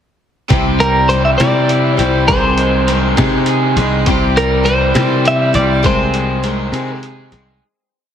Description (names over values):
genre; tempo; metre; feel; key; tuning
folk rock and heartland rock; 68 BPM (dotted quarters); 6/8; straight; unclear; A4 = 439 Hz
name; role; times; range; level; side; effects
picked steel-string acoustic guitar; accompaniment; 0.5-7.6 s; C3 to Ab4; -19 LUFS; left 5 dB; none
raw garage guitar; riff; 0.5-7.6 s; C3 to Ab4; -19 LUFS; right 2 dB; overdrive
picked electric bass; bass; 0.5-7.6 s; C2 to C3; -17 LUFS; equal; none
trip hop sampler-style drum kit; drums; 0.5-7.5 s; hi-hat, kick drum, snare drum; -19 LUFS; equal; none
twelve-string electric guitar; melody; 0.8-7.0 s; Bb4 to E5; -16 LUFS; equal; spring reverb, digital delay
room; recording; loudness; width
light reverb; heavily compressed radio sound, multiband compression; -11 LUFS; side -9 dB against mid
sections
0.5-7.6 verse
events
fade-out 5.8-7.6; break 6.7-7.6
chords
0.5 C; 2.3 Ab/C; 4.1 C; 5.8 Ab/C